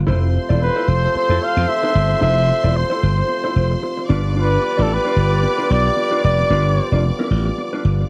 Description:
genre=disco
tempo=112 BPM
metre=4/4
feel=swing 56% on 16ths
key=unclear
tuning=A4 = 438 Hz
part: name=mellow French horn section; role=sustained chords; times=0.0-8.1 s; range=C3 to F4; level=-32 LUFS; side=equal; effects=none
part: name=slap bass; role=bass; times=0.0-8.0 s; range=E1 to F2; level=-19 LUFS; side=equal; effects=none
part: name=clear symphonic string section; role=second line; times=0.1-8.1 s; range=C5 to D6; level=-30 LUFS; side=equal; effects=none
part: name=mellow electric guitar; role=accompaniment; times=0.1-8.0 s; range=D4 to D5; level=-29 LUFS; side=equal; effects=spring reverb
part: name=warm horn section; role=stabs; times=0.1-8.1 s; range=F4 to D5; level=-28 LUFS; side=equal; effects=none
part: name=warm flugelhorn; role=melody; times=0.6-7.0 s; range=A4 to F5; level=-22 LUFS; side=equal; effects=none
room=little or no reverb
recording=dry, close 1970s-style studio recording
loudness=-18 LUFS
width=mono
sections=0.0-8.1 A section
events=none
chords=0.1 Fmaj7; 4.1 G7

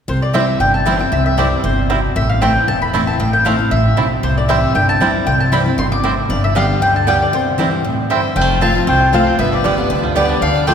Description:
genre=bluegrass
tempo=232 BPM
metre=4/4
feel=straight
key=C major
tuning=A4 = 440 Hz
part: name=mandolin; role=melody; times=0.1-10.7 s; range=C5 to D6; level=-17 LUFS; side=left 1 dB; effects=none
part: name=picked steel-string acoustic guitar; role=accompaniment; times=0.1-10.7 s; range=E2 to G4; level=-18 LUFS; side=left 1 dB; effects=none
part: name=upright bass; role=bass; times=0.1-10.7 s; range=E1 to D2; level=-19 LUFS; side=equal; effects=none
part: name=bluegrass banjo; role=melody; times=0.3-10.7 s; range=G3 to G4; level=-25 LUFS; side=right 2 dB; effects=none
part: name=mandolin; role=stabs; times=0.3-10.7 s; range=A3 to A5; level=-22 LUFS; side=right 5 dB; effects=none
part: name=clear fiddle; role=second line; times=8.1-10.7 s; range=B4 to F5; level=-22 LUFS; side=left 4 dB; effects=none
room=wet cathedral reverb, RT60 5.3 s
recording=recorded in a church or concert hall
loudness=-13 LUFS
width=side -7 dB against mid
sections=0.1-8.4 A section; 8.4-10.7 B section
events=break 7.3-8.4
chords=0.1 C; 2.2 Am; 4.2 C; 6.3 G; 7.3 C; 8.4 F; 9.4 G

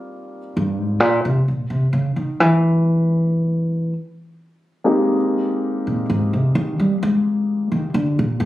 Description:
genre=jazz ballad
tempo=65 BPM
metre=4/4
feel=swing 66% on 8ths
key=Eb major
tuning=A4 = 440 Hz
part: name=dark concert grand piano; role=accompaniment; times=0.0-8.5 s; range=G3 to G4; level=-23 LUFS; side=left 1 dB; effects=none
part: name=upright bass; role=bass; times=0.6-8.5 s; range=G2 to Ab3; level=-17 LUFS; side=equal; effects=none
room=little or no reverb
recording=recorded on a phone in the room, studio reverb, compression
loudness=-17 LUFS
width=side -15 dB against mid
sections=0.0-8.5 A section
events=upright bass solo 0.0-8.5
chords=0.0 Abmaj13; 1.5 Bb(b5, no3); 5.2 Ebadd11

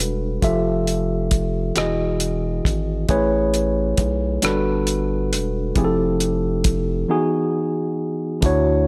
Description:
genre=slow six-eight R&B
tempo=45 BPM (dotted quarters)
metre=6/8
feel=straight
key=unclear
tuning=A4 = 440 Hz
part: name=tine electric piano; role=accompaniment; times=0.0-8.9 s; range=D3 to E5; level=-23 LUFS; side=equal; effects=none
part: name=round analog bass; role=bass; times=0.0-8.9 s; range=E1 to D2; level=-26 LUFS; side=equal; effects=none
part: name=cloth-damped thuddy drum kit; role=drums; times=0.0-8.6 s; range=hi-hat, kick drum, rim click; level=-23 LUFS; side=equal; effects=none
room=light reverb, studio reverb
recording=none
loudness=-21 LUFS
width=mono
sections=0.0-8.4 A section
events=none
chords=0.4 Fmaj9; 1.8 Emaj9; 3.1 Amaj9; 4.4 Gmaj9; 5.8 Fmaj9; 7.1 Emaj9

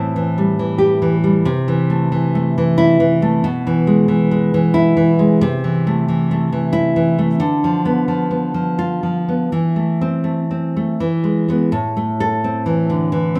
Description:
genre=romantic piece for solo classical guitar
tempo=80-95 BPM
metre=3/4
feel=rubato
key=A minor from 3.4 s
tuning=A4 = 440 Hz
part: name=nylon-string guitar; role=solo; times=0.0-13.4 s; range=A2 to A4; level=-17 LUFS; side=equal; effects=none
room=moderate recital hall reverb, RT60 1.4 s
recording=none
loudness=-17 LUFS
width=mono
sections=0.0-11.7 A section; 11.7-13.4 B section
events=none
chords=0.0 Am7; 1.5 Am/C; 3.4 E/B; 5.4 Am/C; 7.4 Bdim/D; 9.5 Am/E; 11.0 E; 11.7 Am

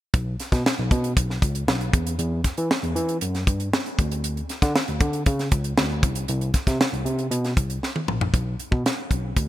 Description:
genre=polished 1980s jazz-funk pop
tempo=117 BPM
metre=4/4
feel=straight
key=B minor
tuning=A4 = 440 Hz
part: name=barky tine electric piano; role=bass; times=0.1-9.5 s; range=A#1 to E3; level=-25 LUFS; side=equal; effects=none
part: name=tight funk drum kit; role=drums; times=0.1-9.5 s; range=hi-hat, kick drum, snare drum, toms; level=-23 LUFS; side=equal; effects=none
room=light reverb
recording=bright 1980s-style digital production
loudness=-21 LUFS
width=side -14 dB against mid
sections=0.1-8.3 A section; 8.3-9.5 B section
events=drum fill 7.8-8.3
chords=none

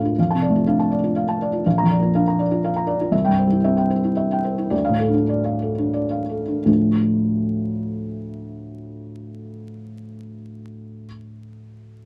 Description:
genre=neoclassical minimalist piano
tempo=82-124 BPM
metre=3/4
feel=rubato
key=D minor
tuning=A4 = 438 Hz
part: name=felt-muted upright piano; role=solo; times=0.0-12.1 s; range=Bb1 to Bb5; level=-22 LUFS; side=equal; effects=none
room=moderate studio reverb, RT60 0.5 s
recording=vinyl crackle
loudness=-20 LUFS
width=mono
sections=0.2-6.7 A section; 6.7-11.0 B section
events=slowing down 2.4-6.7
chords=0.2 F6; 1.7 Bb; 3.1 C; 4.7 Dm

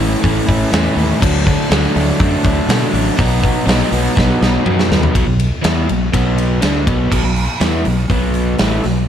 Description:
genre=classic rock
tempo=122 BPM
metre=4/4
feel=straight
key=unclear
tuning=A4 = 436 Hz
part: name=crunchy overdriven guitar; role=riff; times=0.0-9.0 s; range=A2 to E4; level=-16 LUFS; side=equal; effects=none
part: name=fuzz fingered electric bass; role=bass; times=0.0-9.1 s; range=A1 to B2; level=-18 LUFS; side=equal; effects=overdrive
part: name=big rock drum kit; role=drums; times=0.2-9.0 s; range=crash cymbal, hi-hat, kick drum, ride cymbal, snare drum, toms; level=-17 LUFS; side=equal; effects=none
room=light reverb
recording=none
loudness=-12 LUFS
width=side -9 dB against mid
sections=0.0-5.1 A section; 5.1-7.1 B section; 7.1-9.1 C section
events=drum fill 4.2-5.1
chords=0.0 A; 1.2 D; 3.2 B; 5.1 B5

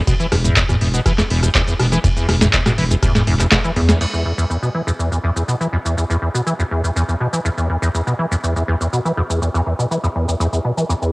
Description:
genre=acid house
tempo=122 BPM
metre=4/4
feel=straight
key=unclear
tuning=A4 = 441 Hz
part: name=acid bass, square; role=riff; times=0.1-11.1 s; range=E2 to E3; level=-17 LUFS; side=equal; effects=ensemble chorus, sidechain pumping, cassette tape, analog delay
part: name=booming analog drum machine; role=drums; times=0.1-11.1 s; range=crash cymbal, handclaps, hi-hat, ride cymbal, rim click, shaker, snare drum, toms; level=-19 LUFS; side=equal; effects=cassette tape
part: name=electronic kick drum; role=drums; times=0.1-3.6 s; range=none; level=-19 LUFS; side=equal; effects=cassette tape
part: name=saturated sub bass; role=bass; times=0.3-3.9 s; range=E1 to E2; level=-18 LUFS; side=equal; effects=sidechain pumping
room=light reverb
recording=home recording on cassette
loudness=-15 LUFS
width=side -23 dB against mid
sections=0.0-4.0 A section; 4.0-11.1 B section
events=drop 0.0-4.0; drum fill 3.5-4.0; band accent 3.9; filter sweep on acid bass 4.0-11.1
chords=0.0 E5

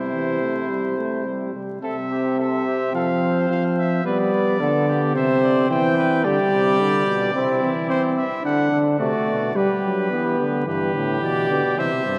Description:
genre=classical, imitative canzona for brass ensemble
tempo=108 BPM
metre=4/4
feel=straight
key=C major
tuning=A4 = 439 Hz
part: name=bright trumpet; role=melody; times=0.0-12.2 s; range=B4 to G5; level=-29 LUFS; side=equal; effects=none
part: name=bright trumpet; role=second line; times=0.0-12.2 s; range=E4 to E5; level=-30 LUFS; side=equal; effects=none
part: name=warm trombone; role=accompaniment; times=0.0-12.2 s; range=D3 to D4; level=-26 LUFS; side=equal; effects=none
part: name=warm euphonium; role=bass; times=0.0-12.2 s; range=G2 to G3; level=-26 LUFS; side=equal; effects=none
room=wet cathedral reverb, RT60 4.8 s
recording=dark, warm production, vinyl crackle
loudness=-21 LUFS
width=mono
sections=0.0-1.8 A section; 1.8-10.7 B section; 10.7-12.2 C section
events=none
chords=0.0 C; 2.9 F5; 4.1 G; 5.2 C; 6.2 G; 7.3 C; 8.4 D; 9.6 G

